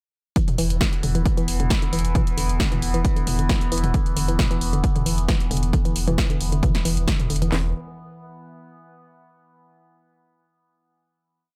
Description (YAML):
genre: driving peak-time techno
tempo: 134 BPM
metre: 4/4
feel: straight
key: unclear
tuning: A4 = 440 Hz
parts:
  - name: woody wave-folded pluck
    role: riff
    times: 0.4-7.7 s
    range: D3 to E3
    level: -30 LUFS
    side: equal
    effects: chorus, sidechain pumping, diffuse ambient delay
  - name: overtone-sweeping drone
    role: drone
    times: 0.7-7.6 s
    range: E3 to B3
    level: -34 LUFS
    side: equal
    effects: chorus, built-in reverb, sidechain pumping
  - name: punchy analog drum machine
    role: drums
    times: 0.4-7.5 s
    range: hi-hat, snare drum, toms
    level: -30 LUFS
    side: equal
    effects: overdrive, sidechain pumping on hats, sidechain pumping on toms
  - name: techno drum kit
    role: drums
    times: 0.4-7.6 s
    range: handclaps, kick drum, snare drum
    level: -24 LUFS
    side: equal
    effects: overdrive
  - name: warm sub bass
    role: bass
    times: 0.6-7.7 s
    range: E1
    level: -26 LUFS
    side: equal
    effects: tube saturation, sidechain pumping, low-pass filter
room: little or no reverb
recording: none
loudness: -22 LUFS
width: mono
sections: 0.4-7.5 drop; 7.5-9.3 final note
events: drop 0.4-7.5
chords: 0.4 E5; 7.5 N.C.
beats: | 0.36 0.81 1.25 1.70 | 2.15 2.60 3.05 3.49 | 3.94 4.39 4.84 5.29 | 5.73 6.18 6.63 7.08 | 7.52